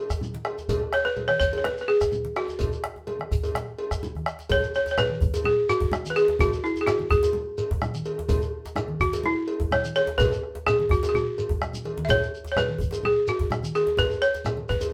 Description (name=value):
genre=west african traditional, West African drum ensemble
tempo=126 BPM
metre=4/4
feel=straight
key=unclear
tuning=A4 = 439 Hz
part: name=bombo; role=percussion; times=0.1-14.8 s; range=none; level=-32 LUFS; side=equal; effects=none
part: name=djembe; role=percussion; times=0.1-14.9 s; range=none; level=-35 LUFS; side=equal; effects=none
part: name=shekere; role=percussion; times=0.1-14.9 s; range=none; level=-39 LUFS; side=equal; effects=none
part: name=congas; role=percussion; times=0.2-14.7 s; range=none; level=-36 LUFS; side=equal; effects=none
part: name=cowbell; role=percussion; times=0.4-14.9 s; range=none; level=-34 LUFS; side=equal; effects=none
part: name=balafon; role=melody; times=0.9-14.9 s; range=E4 to E5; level=-26 LUFS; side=equal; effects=none
room=wet studio reverb, RT60 0.6 s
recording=band playing live in one room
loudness=-25 LUFS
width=mono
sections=0.0-4.5 A section; 4.5-14.9 B section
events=drum fill 4.1-4.5, 11.5-12.1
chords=none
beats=0.21 | 0.69 1.17 1.64 2.12 | 2.60 3.07 3.55 4.02 | 4.50 4.97 5.45 5.92 | 6.40 6.88 7.35 7.83 | 8.30 8.77 9.25 9.72 | 10.20 10.67 11.14 11.62 | 12.09 12.56 13.04 13.51 | 13.98 14.46 14.93